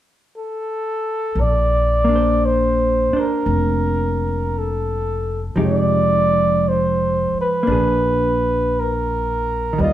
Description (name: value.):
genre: jazz ballad.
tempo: 57 BPM.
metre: 4/4.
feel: swing 68% on 8ths.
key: Bb major.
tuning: A4 = 440 Hz.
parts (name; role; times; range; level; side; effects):
mellow flugelhorn; melody; 0.4-9.9 s; A4 to Eb5; -19 LUFS; right 1 dB; none.
upright bass; bass; 1.4-9.9 s; F1 to Eb2; -22 LUFS; left 1 dB; none.
hollow-body jazz guitar; accompaniment; 2.0-9.9 s; Eb3 to C5; -21 LUFS; equal; none.
room: wet large studio reverb, RT60 0.9 s.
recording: band playing live in one room.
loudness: -16 LUFS.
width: side -12 dB against mid.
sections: 0.0-1.4 A section; 1.4-9.9 B section.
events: none.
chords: 0.0 N.C.; 1.4 Bbadd9; 5.6 Fm9; 7.7 Bb7b9.